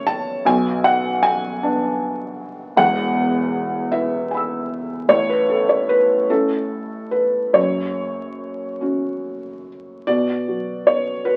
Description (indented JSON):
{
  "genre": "neoclassical minimalist piano",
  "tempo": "47-52 BPM (dotted quarters)",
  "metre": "6/8",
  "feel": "rubato",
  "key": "unclear",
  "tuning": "A4 = 440 Hz",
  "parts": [
    { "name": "felt-muted upright piano", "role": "solo", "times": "0.0-11.4 s", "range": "E1 to E6", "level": "-20 LUFS", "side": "equal", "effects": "none" }
  ],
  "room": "wet studio reverb, RT60 0.7 s",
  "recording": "very old 78 rpm record, vinyl crackle",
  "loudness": "-20 LUFS",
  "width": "mono",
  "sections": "0.0-10.1 A section; 10.1-11.4 B section",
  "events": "none",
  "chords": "0.5 Bm; 2.8 E; 5.1 A; 7.6 F#5; 10.1 Bm"
}